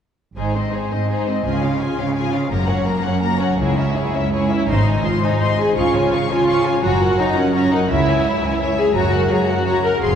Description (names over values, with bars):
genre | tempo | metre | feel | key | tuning
cinematic | 112 BPM (dotted quarters) | 12/8 | straight | Ab mixolydian | A4 = 440 Hz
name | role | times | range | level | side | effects
warm symphonic violin section | melody | 0.4-10.2 s | C5 to Db6 | -25 LUFS | left 3 dB | none
warm symphonic violin section | second line | 0.4-10.2 s | Fb4 to Ab5 | -25 LUFS | left 3 dB | none
rich symphonic viola section | accompaniment | 0.4-10.2 s | Bb3 to Bb4 | -20 LUFS | right 1 dB | none
concert harp | arpeggios | 0.4-10.2 s | F2 to Bb5 | -26 LUFS | left 6 dB | none
rich symphonic cello section | bass | 0.4-10.2 s | Db2 to Db3 | -22 LUFS | right 3 dB | none
rich symphonic double bass section | bass | 0.4-10.2 s | F1 to Db2 | -25 LUFS | right 2 dB | none
timpani | percussion | 4.7-5.2 s | Ab2 | -30 LUFS | equal | none
room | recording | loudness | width
wet cathedral reverb, RT60 4.9 s | recorded in a church or concert hall | -16 LUFS | side -8 dB against mid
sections
0.4-4.7 A section; 4.7-10.2 B section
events
none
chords
0.4 Ab; 1.4 Db; 2.5 Gb; 3.6 Dbm; 4.7 Ab; 5.8 Db; 6.8 Gb; 7.9 Dbm; 9.0 Gb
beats
| 0.36 0.91 1.45 1.98 | 2.52 3.05 3.59 4.14 | 4.70 5.23 5.77 6.31 | 6.84 7.37 7.90 8.43 | 8.96 9.49 10.03